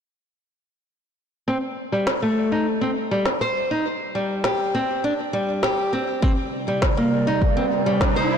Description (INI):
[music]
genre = organic downtempo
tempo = 101 BPM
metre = 4/4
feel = straight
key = unclear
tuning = A4 = 440 Hz
[part]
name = nylon-string guitar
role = arpeggios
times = 1.5-8.4 s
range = G3 to C5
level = -22 LUFS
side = equal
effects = low-pass filter, digital delay
[part]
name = electronic snare drum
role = drums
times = 2.1-8.1 s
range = none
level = -27 LUFS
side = equal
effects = none
[part]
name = warbly tape-like pad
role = sustained chords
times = 6.2-8.4 s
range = C3 to D5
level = -24 LUFS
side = right 4 dB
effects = chorus, built-in reverb, sidechain pumping
[part]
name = electronic kick drum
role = drums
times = 6.2-8.1 s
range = none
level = -21 LUFS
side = left 1 dB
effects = overdrive
[part]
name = riser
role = sound effects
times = 6.8-8.4 s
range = none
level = -27 LUFS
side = left 1 dB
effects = none
[sound]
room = moderate lush hall reverb, RT60 3.2 s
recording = blown-out, overdriven recording, overdrive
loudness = -20 LUFS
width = side -7 dB against mid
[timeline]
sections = 1.5-8.4 A section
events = riser 6.8-8.4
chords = 1.5 Gsus24; 3.9 Gsus4; 6.2 C7sus2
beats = | 1.48 2.07 2.66 3.26 | 3.85 4.45 5.04 5.63 | 6.23 6.82 7.42 8.01